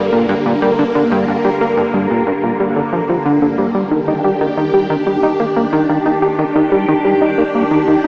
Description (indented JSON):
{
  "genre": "ambient, sequencer-driven space music",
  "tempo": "91 BPM",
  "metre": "4/4",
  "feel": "straight",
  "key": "unclear",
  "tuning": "A4 = 440 Hz",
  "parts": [
    { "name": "phased string machine", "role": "sustained chords", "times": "0.0-8.1 s", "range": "G2 to G4", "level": "-18 LUFS", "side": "equal", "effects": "ensemble chorus, phaser" },
    { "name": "plucky analog bass", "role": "riff", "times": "0.0-8.1 s", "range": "G2 to G4", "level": "-18 LUFS", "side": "equal", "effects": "tape echo" }
  ],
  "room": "wet huge ambient reverb, RT60 8.1 s",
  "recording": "cassette tape, small speaker sound",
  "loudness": "-15 LUFS",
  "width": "mono",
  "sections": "0.0-3.9 A section; 3.9-8.1 B section",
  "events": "none",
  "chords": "0.0 Gm; 3.9 Ebmaj7",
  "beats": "0.62 | 1.28 1.94 2.60 3.26 | 3.92 4.58 5.24 5.90 | 6.56 7.21 7.87"
}